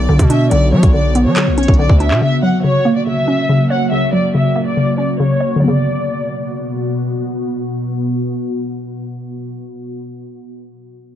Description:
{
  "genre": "hip hop, drill",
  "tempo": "141 BPM",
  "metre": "4/4",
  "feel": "half-time",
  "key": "B harmonic minor",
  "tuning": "A4 = 438 Hz",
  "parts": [
    { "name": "warm studio violin section", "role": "melody", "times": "0.0-6.9 s", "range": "C#5 to F#5", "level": "-20 LUFS", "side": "left 1 dB", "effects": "none" },
    { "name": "hollow square pluck", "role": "accompaniment", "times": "0.0-9.8 s", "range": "C#3 to C#5", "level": "-16 LUFS", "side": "left 1 dB", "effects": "chorus" },
    { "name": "ethereal airy pad", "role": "sustained chords", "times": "0.0-9.7 s", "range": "B2 to F#4", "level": "-21 LUFS", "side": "equal", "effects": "ensemble chorus, built-in reverb" },
    { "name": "distorted 808-style bass", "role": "bass", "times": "0.0-2.2 s", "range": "B1 to F#3", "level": "-14 LUFS", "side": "equal", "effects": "distortion" },
    { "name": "drill drum kit", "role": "drums", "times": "0.2-2.2 s", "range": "handclaps, hi-hat, kick drum", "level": "-13 LUFS", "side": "equal", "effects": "none" }
  ],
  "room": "light reverb",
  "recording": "low-pass filter",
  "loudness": "-13 LUFS",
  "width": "side -10 dB against mid",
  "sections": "0.0-5.6 A section; 5.6-9.0 B section",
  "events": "none",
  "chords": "0.0 Bmadd9; 2.2 F#; 5.6 Bmadd9"
}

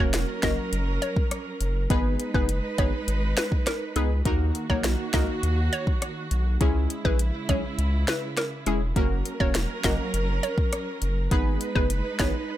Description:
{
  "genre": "dancehall",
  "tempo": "102 BPM",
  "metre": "4/4",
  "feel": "straight",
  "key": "G# minor",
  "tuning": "A4 = 440 Hz",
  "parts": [
    { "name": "hollow square pluck", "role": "melody", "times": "0.0-12.3 s", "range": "G#4 to D#5", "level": "-32 LUFS", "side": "equal", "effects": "chorus, tape echo" },
    { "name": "synth brass stab", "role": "accompaniment", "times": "0.0-12.3 s", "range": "G#3 to B4", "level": "-30 LUFS", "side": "left 1 dB", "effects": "chorus" },
    { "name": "warm studio string section", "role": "sustained chords", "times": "0.0-12.6 s", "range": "C#3 to B4", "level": "-32 LUFS", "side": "right 3 dB", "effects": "sidechain pumping" },
    { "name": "round analog bass", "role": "bass", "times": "0.0-12.3 s", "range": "E1 to D#2", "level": "-26 LUFS", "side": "equal", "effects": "none" },
    { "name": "afro-pop drum kit", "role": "drums", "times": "0.1-12.3 s", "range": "hi-hat, kick drum, rim click, snare drum", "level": "-26 LUFS", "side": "equal", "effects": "none" }
  ],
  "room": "digital ambience",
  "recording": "none",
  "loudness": "-23 LUFS",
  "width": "side -13 dB against mid",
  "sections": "0.0-12.6 A section",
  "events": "none",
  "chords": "0.0 F#; 1.9 G#m; 4.3 D#m; 6.6 C#m; 9.0 F#; 11.3 G#m"
}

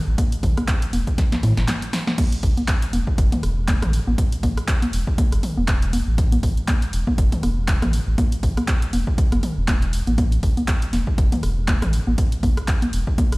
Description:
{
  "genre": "acid house",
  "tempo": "120 BPM",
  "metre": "4/4",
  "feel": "swing 57% on 16ths",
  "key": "unclear",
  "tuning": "A4 = 440 Hz",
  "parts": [
    { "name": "saturated sub bass", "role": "bass", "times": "0.1-13.4 s", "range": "E1 to A2", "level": "-21 LUFS", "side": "equal", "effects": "sidechain pumping" },
    { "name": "electronic kick drum", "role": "drums", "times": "0.2-13.3 s", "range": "none", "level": "-19 LUFS", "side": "equal", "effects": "overdrive" },
    { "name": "punchy analog drum machine", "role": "drums", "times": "0.2-13.4 s", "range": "congas, crash cymbal, handclaps, hi-hat, rim click, snare drum, toms", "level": "-24 LUFS", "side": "equal", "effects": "overdrive" }
  ],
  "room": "digital ambience",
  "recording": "played on a big sound system in a bare room, stone room reverb",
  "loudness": "-18 LUFS",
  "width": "side -24 dB against mid",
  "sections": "0.0-2.2 A section; 2.2-13.4 B section",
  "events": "drum fill 1.2-2.2; break 1.7-2.2; drop 2.2-13.4",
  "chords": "none"
}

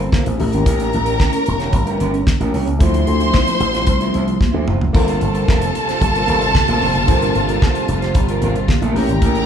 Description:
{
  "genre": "disco",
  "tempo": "112 BPM",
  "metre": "4/4",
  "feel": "straight",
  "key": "unclear",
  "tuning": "A4 = 442 Hz",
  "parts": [
    { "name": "warm studio violin section", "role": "second line", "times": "0.0-9.5 s", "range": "A4 to C6", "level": "-21 LUFS", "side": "equal", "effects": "none" },
    { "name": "electric guitar at the edge of break-up", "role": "accompaniment", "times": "0.0-9.5 s", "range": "F3 to C#5", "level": "-23 LUFS", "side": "right 3 dB", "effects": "none" },
    { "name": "tine electric piano", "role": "accompaniment", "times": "0.0-9.5 s", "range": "A3 to C5", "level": "-24 LUFS", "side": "left 4 dB", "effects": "medium stereo tremolo" },
    { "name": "slap bass with an envelope filter", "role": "bass", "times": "0.0-9.4 s", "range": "E1 to D2", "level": "-20 LUFS", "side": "equal", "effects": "none" },
    { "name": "damped 70s drum kit", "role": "drums", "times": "0.0-9.5 s", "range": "hi-hat, kick drum, snare drum, splash cymbal, toms", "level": "-18 LUFS", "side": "equal", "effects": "none" },
    { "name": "congas", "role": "percussion", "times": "0.1-9.2 s", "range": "none", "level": "-29 LUFS", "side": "left 2 dB", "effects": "none" },
    { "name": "dark studio string section", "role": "sustained chords", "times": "4.9-9.5 s", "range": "Bb2 to G4", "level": "-24 LUFS", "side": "right 1 dB", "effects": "none" }
  ],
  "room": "moderate large studio reverb, RT60 1.2 s",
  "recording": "band playing live in one room",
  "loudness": "-14 LUFS",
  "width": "side -8 dB against mid",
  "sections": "0.0-9.5 A section",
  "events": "drum fill 4.4-4.9",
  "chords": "0.4 A7b9; 2.8 Dm9; 4.9 Gm11; 8.9 A7b9"
}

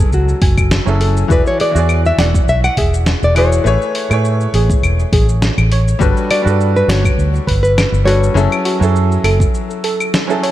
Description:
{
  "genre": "sunset chillout",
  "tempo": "102 BPM",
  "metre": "4/4",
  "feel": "swing 54% on 16ths",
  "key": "A major",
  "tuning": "A4 = 440 Hz",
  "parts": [
    { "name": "nylon-string guitar", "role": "melody", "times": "0.0-10.4 s", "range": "F#4 to F#5", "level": "-19 LUFS", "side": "left 1 dB", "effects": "ping-pong delay" },
    { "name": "bright baby grand piano", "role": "accompaniment", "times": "0.0-10.5 s", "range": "E3 to D5", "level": "-20 LUFS", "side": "moving between left 6 dB and right 5 dB", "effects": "auto-pan, ping-pong delay" },
    { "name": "soft round pluck", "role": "arpeggios", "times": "0.0-10.5 s", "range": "F#4 to G#5", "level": "-24 LUFS", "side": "right 2 dB", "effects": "chorus, ping-pong delay" },
    { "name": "vintage muted fingered electric bass", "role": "bass", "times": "0.0-9.4 s", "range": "E1 to A2", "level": "-14 LUFS", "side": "equal", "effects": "none" },
    { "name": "dusty soul sampler-style drum kit", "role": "drums", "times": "0.1-10.5 s", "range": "claves, hi-hat, shaker, snare drum", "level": "-20 LUFS", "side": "left 1 dB", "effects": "none" },
    { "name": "electronic kick drum", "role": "drums", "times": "0.4-9.5 s", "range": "none", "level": "-15 LUFS", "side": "equal", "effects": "none" }
  ],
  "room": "light reverb, digital ambience",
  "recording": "dark, warm production",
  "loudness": "-11 LUFS",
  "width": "side -13 dB against mid",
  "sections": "0.0-10.5 A section",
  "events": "break 9.5-10.5",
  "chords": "0.0 F#m9; 1.3 E7; 3.7 Amaj7; 6.0 Gmaj7; 8.4 F#m9"
}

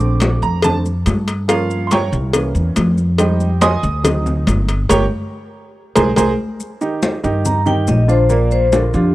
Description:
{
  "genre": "Afro-Cuban jazz",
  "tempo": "141 BPM",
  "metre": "4/4",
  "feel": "straight",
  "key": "unclear",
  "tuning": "A4 = 440 Hz",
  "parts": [
    { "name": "warm baby grand piano", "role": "accompaniment", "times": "0.0-9.1 s", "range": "Bb2 to Eb6", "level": "-19 LUFS", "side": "right 4 dB", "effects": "none" },
    { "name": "upright bass", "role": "bass", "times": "0.0-9.1 s", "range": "G1 to G2", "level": "-17 LUFS", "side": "equal", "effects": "none" },
    { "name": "congas", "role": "percussion", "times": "0.0-9.1 s", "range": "none", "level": "-21 LUFS", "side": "left 2 dB", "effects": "none" },
    { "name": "maracas", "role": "percussion", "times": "0.0-9.1 s", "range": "none", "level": "-30 LUFS", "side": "left 6 dB", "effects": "none" },
    { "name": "cowbell", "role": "percussion", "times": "0.2-6.3 s", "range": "none", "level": "-20 LUFS", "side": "left 3 dB", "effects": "none" },
    { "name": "vibraphone with medium mallets", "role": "melody", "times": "7.5-9.1 s", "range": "G4 to Bb5", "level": "-18 LUFS", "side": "left 2 dB", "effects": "none" }
  ],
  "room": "small room ambience",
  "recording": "dry, close 1970s-style studio recording",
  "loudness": "-14 LUFS",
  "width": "side -16 dB against mid",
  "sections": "0.0-6.6 A section; 6.6-9.1 A section",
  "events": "grand piano solo 0.0-6.6; band accent 4.9-6.6; drum fill 6.0-6.6; vibraphone solo 6.6-9.1",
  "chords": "0.0 Bbmaj7; 1.5 Gm7b5; 2.3 C7b9; 3.2 Fm9; 4.0 D7b9; 4.9 Gdim; 5.7 Abadd9/C; 6.6 Ebmaj7; 8.3 Bb"
}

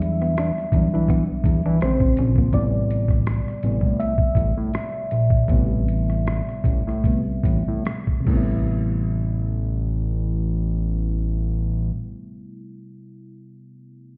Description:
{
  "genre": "R&B, neo-soul",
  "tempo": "70-83 BPM",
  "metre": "4/4",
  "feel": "swing 53% on 16ths",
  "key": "A dorian",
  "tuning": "A4 = 439 Hz",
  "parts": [
    { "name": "semi-hollow electric guitar", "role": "second line", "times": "0.0-2.5 s", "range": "Bb3 to D4", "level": "-33 LUFS", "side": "equal", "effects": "none" },
    { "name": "mellow FM electric piano", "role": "accompaniment", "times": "0.0-14.2 s", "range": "C3 to E5", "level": "-28 LUFS", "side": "equal", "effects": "chorus" },
    { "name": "fat analog bass", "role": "bass", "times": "0.0-11.9 s", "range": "A1 to E3", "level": "-24 LUFS", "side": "equal", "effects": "none" },
    { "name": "boom bap sampler-style drum kit", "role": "drums", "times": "0.0-8.5 s", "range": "crash cymbal, hi-hat, kick drum, rim click", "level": "-24 LUFS", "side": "equal", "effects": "none" }
  ],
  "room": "digital ambience",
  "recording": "heard muffled through a wall, stone room reverb, EQ",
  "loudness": "-22 LUFS",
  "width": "mono",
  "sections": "0.0-8.7 A section; 8.7-12.1 B section",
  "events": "FM electric piano solo 0.0-8.7; slowing down 2.5-8.7",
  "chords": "0.0 Em7; 1.8 Bbm9; 2.5 Am9"
}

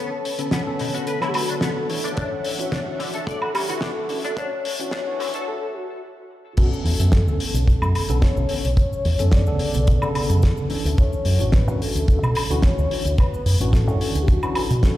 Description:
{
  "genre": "nu-disco, nu disco",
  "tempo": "109 BPM",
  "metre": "4/4",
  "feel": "swing 53% on 16ths",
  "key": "D major",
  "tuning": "A4 = 438 Hz",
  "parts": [
    { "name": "soft octave-layered synth lead", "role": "melody", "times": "0.0-15.0 s", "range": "F#4 to D5", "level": "-28 LUFS", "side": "left 2 dB", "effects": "chorus, tremolo, digital delay" },
    { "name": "lush unison pad", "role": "sustained chords", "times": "0.0-5.4 s", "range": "D3 to B5", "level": "-35 LUFS", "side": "equal", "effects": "chorus, sidechain pumping" },
    { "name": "direct-recorded clean electric guitar", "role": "riff", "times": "0.0-5.4 s", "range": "B2 to D5", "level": "-32 LUFS", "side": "left 2 dB", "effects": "ensemble chorus, low-pass filter" },
    { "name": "damped 70s drum kit", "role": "drums", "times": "0.3-15.0 s", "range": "cabasa, crash cymbal, hi-hat, snare drum, woodblock", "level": "-28 LUFS", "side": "equal", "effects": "studio reverb" },
    { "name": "tine electric piano", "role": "accompaniment", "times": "0.4-15.0 s", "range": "C#3 to C#5", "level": "-28 LUFS", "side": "equal", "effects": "medium stereo tremolo, vintage 12-bit sampler grit" },
    { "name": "kick drum", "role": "drums", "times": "2.2-14.9 s", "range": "none", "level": "-18 LUFS", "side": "equal", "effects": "studio reverb" },
    { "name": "fingered electric bass with an envelope filter", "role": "bass", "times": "6.6-14.8 s", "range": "A1 to B2", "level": "-20 LUFS", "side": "equal", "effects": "none" }
  ],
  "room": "light reverb, small room ambience",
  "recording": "played on a big sound system in a bare room, large studio reverb, high-pass filter",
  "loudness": "-19 LUFS",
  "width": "side -15 dB against mid",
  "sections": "0.0-6.6 A section; 6.6-15.0 B section",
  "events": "build-up 0.0-6.6; filter sweep on analog synth pad 0.0-6.6; break 5.5-6.6; drop 6.6-15.0",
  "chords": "0.0 Bm9; 1.9 Dmaj9; 6.6 Bm9; 10.7 Dmaj9"
}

